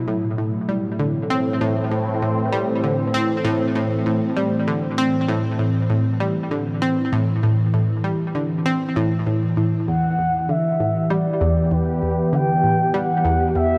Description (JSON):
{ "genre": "ambient, sequencer-driven space music", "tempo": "98 BPM", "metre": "4/4", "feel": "straight", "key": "unclear", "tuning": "A4 = 439 Hz", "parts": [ { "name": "sweeping resonant pad", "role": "sustained chords", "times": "0.0-13.8 s", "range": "A2 to G4", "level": "-24 LUFS", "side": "equal", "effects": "chorus" }, { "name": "analog pluck", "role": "riff", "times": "0.1-13.8 s", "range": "E2 to C4", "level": "-24 LUFS", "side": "equal", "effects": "chorus, analog delay" }, { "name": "expressive portamento lead", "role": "melody", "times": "9.9-13.8 s", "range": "B4 to G5", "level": "-24 LUFS", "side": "equal", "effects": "chorus, analog delay" } ], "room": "wet huge ambient reverb, RT60 8.0 s", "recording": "none", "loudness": "-21 LUFS", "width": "mono", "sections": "0.0-13.8 A section", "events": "none", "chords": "0.1 Am; 9.9 Em" }